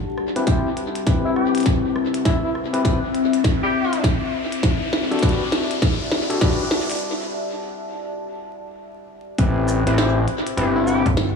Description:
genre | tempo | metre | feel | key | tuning
glitch hop | 101 BPM | 4/4 | swing 63% on 16ths | A dorian | A4 = 440 Hz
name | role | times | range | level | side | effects
riser | sound effects | 1.4-7.0 s | none | -31 LUFS | left 2 dB | none
deep dark ambient pad | texture | 0.0-11.4 s | C4 to A5 | -26 LUFS | left 4 dB | chorus, built-in reverb, sidechain pumping
glitchy drum kit | drums | 0.2-11.3 s | hi-hat, rim click, shaker, snare drum | -26 LUFS | equal | studio ambience, dub echo
overdriven tine electric piano | stabs | 0.4-11.4 s | C4 to C5 | -24 LUFS | left 3 dB | sidechain pumping, low-pass filter, dub echo
electronic kick drum | drums | 0.5-11.1 s | none | -20 LUFS | equal | studio ambience
clear tenor saxophone | melody | 1.3-4.0, 10.8-11.1 s | E4 to G4 | -27 LUFS | equal | low-pass filter, dub echo
gritty driven synth bass | bass | 9.4-11.0 s | G1 to A1 | -21 LUFS | equal | tube saturation
slap-like FM bass | bass | 11.1-11.4 s | G1 | -21 LUFS | right 1 dB | tube saturation
room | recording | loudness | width
moderate spring reverb, RT60 1.7 s, digital ambience | echo-heavy mix, vinyl crackle, small room reverb | -18 LUFS | side -5 dB against mid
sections
0.0-9.4 A section; 9.4-11.4 B section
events
build-up 0.0-9.4; drum fill 0.0-7.0; filter sweep on tine electric piano 0.0-9.4; riser 1.4-7.0; break 7.0-9.4; drop 9.4-11.4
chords
0.0 Am7; 4.6 Em11; 9.4 Am7

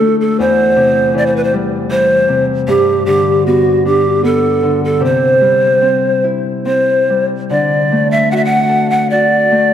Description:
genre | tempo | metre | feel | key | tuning
celtic folk, Celtic slow air | 70-80 BPM | 3/4 | rubato | unclear | A4 = 441 Hz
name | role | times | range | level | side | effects
breathy large pan pipes | melody | 0.0-9.7 s | F#4 to F#5 | -12 LUFS | right 1 dB | none
Celtic harp | accompaniment | 0.0-9.7 s | E2 to A4 | -15 LUFS | left 2 dB | none
room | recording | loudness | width
wet church reverb, RT60 2.9 s | none | -10 LUFS | side -9 dB against mid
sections
0.0-9.7 A section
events
none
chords
0.4 C/E; 2.7 G; 5.0 C; 7.5 D

